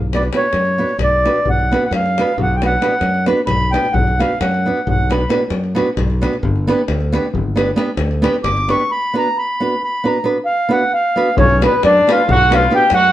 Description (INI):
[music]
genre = balkan folk, Balkan wedding band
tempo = 266 BPM (eighths)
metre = 11/8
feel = straight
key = B minor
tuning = A4 = 440 Hz
[part]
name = fingered electric bass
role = bass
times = 0.0-13.1 s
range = G1 to F#2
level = -19 LUFS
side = equal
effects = none
[part]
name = mellow accordion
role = melody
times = 0.1-13.1 s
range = B4 to D6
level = -16 LUFS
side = right 1 dB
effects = none
[part]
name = nylon-string guitar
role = accompaniment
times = 0.1-12.8 s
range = B3 to B4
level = -18 LUFS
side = right 2 dB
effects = none
[part]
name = davul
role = percussion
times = 0.1-13.1 s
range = none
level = -22 LUFS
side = left 4 dB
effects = none
[part]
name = mellow trumpet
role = second line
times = 11.4-13.1 s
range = B3 to G4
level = -19 LUFS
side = left 4 dB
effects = none
[sound]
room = moderate studio reverb, RT60 0.8 s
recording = band playing live in one room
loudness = -13 LUFS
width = side -13 dB against mid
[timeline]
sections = 0.0-11.4 A section; 11.4-13.1 B section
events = accordion solo 0.0-11.4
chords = 0.0 Bm; 6.4 G; 8.9 Bm